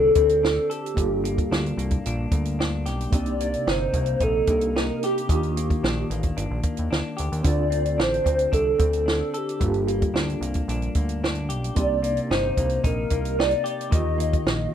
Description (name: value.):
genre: indie pop, bedroom pop.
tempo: 111 BPM.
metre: 4/4.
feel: straight.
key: unclear.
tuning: A4 = 439 Hz.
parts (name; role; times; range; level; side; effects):
hollow clarinet-like synth lead; melody; 0.0-14.7 s; G4 to Eb5; -24 LUFS; equal; phaser, ensemble chorus, slapback echo, plate reverb.
clean electric guitar; accompaniment; 0.0-14.7 s; G2 to A4; -30 LUFS; left 3 dB; analog chorus, warbly pitch drift, plate reverb.
reed electric piano; accompaniment; 0.0-14.7 s; D3 to A4; -34 LUFS; right 5 dB; fast tremolo, plate reverb.
fat analog bass; bass; 0.0-14.7 s; G1 to Eb2; -27 LUFS; equal; none.
compact cocktail drum kit; drums; 0.2-14.6 s; hi-hat, kick drum, snare drum; -25 LUFS; right 1 dB; none.
room: moderate studio reverb, RT60 0.5 s.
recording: rough home demo mix.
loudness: -21 LUFS.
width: side -9 dB against mid.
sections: 0.0-14.7 A section.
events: none.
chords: 0.0 Dm7; 1.0 Gm7; 3.1 Cm7; 5.3 Ebmaj7; 7.4 Dm7; 9.6 Gm7; 11.8 Cm7; 13.9 Ebmaj7.